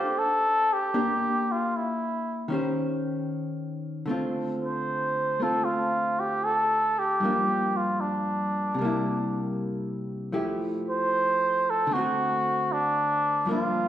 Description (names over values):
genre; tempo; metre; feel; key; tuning
jazz ballad; 77 BPM; 4/4; swing 69% on 8ths; unclear; A4 = 439 Hz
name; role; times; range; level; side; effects
trumpet with cup mute; melody; 0.0-13.9 s; D4 to C5; -25 LUFS; right 1 dB; none
vintage hollow-body jazz guitar; accompaniment; 0.0-13.9 s; G2 to C5; -29 LUFS; left 1 dB; none
room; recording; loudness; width
wet recital hall reverb, RT60 1.5 s; recorded in a church or concert hall; -24 LUFS; side -11 dB against mid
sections
0.0-13.9 A section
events
none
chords
0.0 Bbmaj9; 0.9 Em7b5; 2.5 Eb6; 4.1 Dm7; 7.2 Gm7; 8.8 C7; 10.3 Fmaj9; 11.9 D7